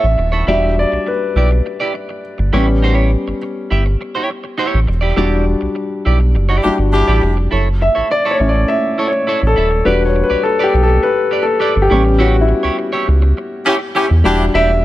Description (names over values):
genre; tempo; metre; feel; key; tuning
soul; 102 BPM; 4/4; straight; E dorian; A4 = 439 Hz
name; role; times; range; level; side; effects
warm grand piano; accompaniment; 0.0-14.8 s; G3 to F#5; -16 LUFS; left 2 dB; none
semi-hollow electric guitar; riff; 0.0-14.7 s; E4 to E5; -21 LUFS; right 3 dB; wide subtle chorus
round analog bass; bass; 0.0-14.8 s; D#1 to E2; -14 LUFS; equal; none
clear horn section; stabs; 6.6-7.3, 13.7-14.4 s; C#4 to G4; -17 LUFS; left 2 dB; none
room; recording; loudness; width
light reverb; none; -12 LUFS; side -15 dB against mid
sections
0.0-7.5 A section; 7.5-14.8 B section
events
grand piano solo 0.0-7.5, 7.5-14.8; band accent 5.2-7.5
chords
0.5 Em7; 2.5 A7; 4.9 Em7; 7.5 F#m7; 9.9 Em7; 11.9 A7; 14.3 Em7